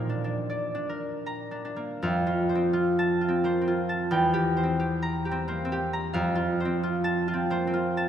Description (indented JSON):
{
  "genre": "classical, solo harp piece",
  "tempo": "74-90 BPM",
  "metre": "3/4",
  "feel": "rubato",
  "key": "F major",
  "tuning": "A4 = 440 Hz",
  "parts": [
    { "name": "concert harp", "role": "solo", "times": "0.0-8.1 s", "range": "E2 to Bb5", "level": "-24 LUFS", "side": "equal", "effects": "none" }
  ],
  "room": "wet church reverb, RT60 3.2 s",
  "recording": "none",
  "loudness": "-24 LUFS",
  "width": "side -9 dB against mid",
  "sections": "0.0-2.0 A section; 2.0-8.1 B section",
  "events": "none",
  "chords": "0.0 Bb; 2.0 F; 4.1 C7/E; 6.1 F",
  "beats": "0.49 1.27 | 2.03 2.74 3.44 | 4.12 4.80 5.47 | 6.15 6.82 7.50"
}